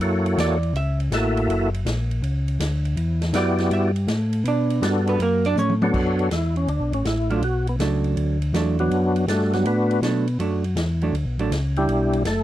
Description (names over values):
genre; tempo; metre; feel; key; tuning
soul jazz organ trio; 162 BPM; 4/4; swing 66% on 8ths; B minor; A4 = 440 Hz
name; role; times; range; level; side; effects
percussive tonewheel organ; melody; 0.0-12.4 s; F#3 to E5; -22 LUFS; equal; slow rotary speaker, overdrive, chorus vibrato
tonewheel organ; bass; 0.0-12.4 s; F#1 to B2; -22 LUFS; equal; chorus vibrato
vintage drum kit; drums; 0.0-12.4 s; crash cymbal, hi-hat, kick drum, ride cymbal, snare drum, toms; -31 LUFS; left 1 dB; none
vintage hollow-body jazz guitar; accompaniment; 0.4-1.0, 3.4-11.5 s; F#3 to E5; -24 LUFS; right 4 dB; none
room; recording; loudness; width
little or no reverb; dry, close 1970s-style studio recording; -19 LUFS; side -13 dB against mid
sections
0.0-5.9 A section; 5.9-12.4 A section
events
hollow-body jazz guitar solo 0.0-5.9; drum fill 5.6-5.9; tonewheel organ solo 5.9-12.4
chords
0.0 F#7#9; 3.0 Em7; 4.5 Bm7; 5.2 F#; 5.9 Bm7; 11.9 Em7